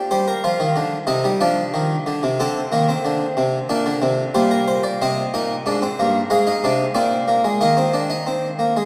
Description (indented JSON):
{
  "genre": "classical, baroque-style 3-part fugue for harpsichord",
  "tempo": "92 BPM",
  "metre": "4/4",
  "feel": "straight",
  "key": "G minor",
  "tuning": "A4 = 438 Hz",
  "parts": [
    { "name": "harpsichord", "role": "solo", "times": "0.0-8.9 s", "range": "G2 to F5", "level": "-20 LUFS", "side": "equal", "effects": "none" }
  ],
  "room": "wet church reverb, RT60 3.4 s",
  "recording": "recorded in a church or concert hall",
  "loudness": "-20 LUFS",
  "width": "mono",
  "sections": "0.0-5.0 A section; 5.0-8.9 B section",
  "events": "none",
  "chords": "0.0 Gm; 1.1 Cm; 2.4 D5; 3.7 Gm/Bb; 5.0 Cm; 6.3 Fm/Ab; 7.0 Bb7; 7.6 Eb5"
}